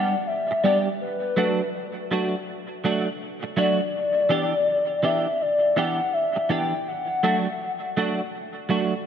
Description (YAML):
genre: reggae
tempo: 82 BPM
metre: 4/4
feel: swing 63% on 16ths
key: E minor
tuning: A4 = 441 Hz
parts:
  - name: hollow clarinet-like synth lead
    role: melody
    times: 0.0-8.0 s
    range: B4 to G5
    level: -24 LUFS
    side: left 2 dB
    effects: chorus, dub echo
  - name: semi-hollow electric guitar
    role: accompaniment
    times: 0.0-8.9 s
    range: E3 to G4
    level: -25 LUFS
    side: right 3 dB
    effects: ensemble chorus, dub echo
room: moderate lush hall reverb, RT60 2.6 s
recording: rough home demo mix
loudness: -21 LUFS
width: side -8 dB against mid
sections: 0.0-9.1 A section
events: none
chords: 0.0 G6; 1.0 Bm7; 3.9 Em7; 6.9 F#m